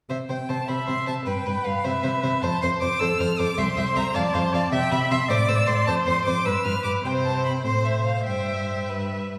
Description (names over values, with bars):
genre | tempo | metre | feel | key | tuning
quick classical-period movement for string quartet | 103 BPM (dotted quarters) | 6/8 | rubato | C major | A4 = 439 Hz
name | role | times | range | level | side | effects
rich violin | melody | 0.1-8.9 s | E5 to F6 | -30 LUFS | equal | none
clear violin | second line | 0.1-9.3 s | B4 to F5 | -33 LUFS | equal | none
rich cello | bass | 0.1-9.3 s | C2 to C3 | -28 LUFS | equal | none
rich viola | accompaniment | 0.7-9.2 s | A4 to E5 | -30 LUFS | equal | none
room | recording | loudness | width
wet concert hall reverb, RT60 2.1 s | recorded in a church or concert hall | -24 LUFS | mono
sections
0.1-9.4 A section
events
none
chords
0.1 C; 1.3 G; 1.8 C; 2.4 F; 3.6 C; 4.1 F; 4.7 C; 5.3 Am; 5.9 F5; 6.5 G; 7.0 Am/C; 7.6 Am; 8.3 C/G